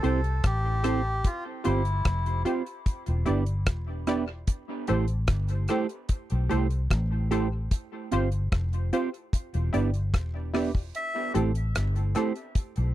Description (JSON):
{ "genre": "dub reggae", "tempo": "74 BPM", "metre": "4/4", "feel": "straight", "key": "A minor", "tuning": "A4 = 437 Hz", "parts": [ { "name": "melodica", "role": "melody", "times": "0.0-2.4, 11.0-11.3 s", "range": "E4 to E5", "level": "-33 LUFS", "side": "left 1 dB", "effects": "dub echo" }, { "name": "mellow electric guitar", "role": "accompaniment", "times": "0.0-12.3 s", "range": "A3 to C5", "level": "-31 LUFS", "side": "right 7 dB", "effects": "dub echo" }, { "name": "filtered dub chord stab", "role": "stabs", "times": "0.0-12.3 s", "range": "C4 to D5", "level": "-34 LUFS", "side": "left 5 dB", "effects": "chorus, dub echo" }, { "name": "vintage muted fingered electric bass", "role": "bass", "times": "0.0-12.9 s", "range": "E1 to C2", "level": "-27 LUFS", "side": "equal", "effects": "none" }, { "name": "damped 70s drum kit", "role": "drums", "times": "0.0-12.9 s", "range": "hi-hat, kick drum, rim click", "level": "-27 LUFS", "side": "equal", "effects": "none" } ], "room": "little or no reverb", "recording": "dry, close 1970s-style studio recording", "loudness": "-25 LUFS", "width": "side -14 dB against mid", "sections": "0.0-12.9 A section", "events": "kick muted 10.9-12.6", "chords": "0.0 Am7; 1.2 G7sus4; 2.9 Em7; 4.5 Am7; 7.7 G7sus4; 9.3 Em7; 10.9 Am7" }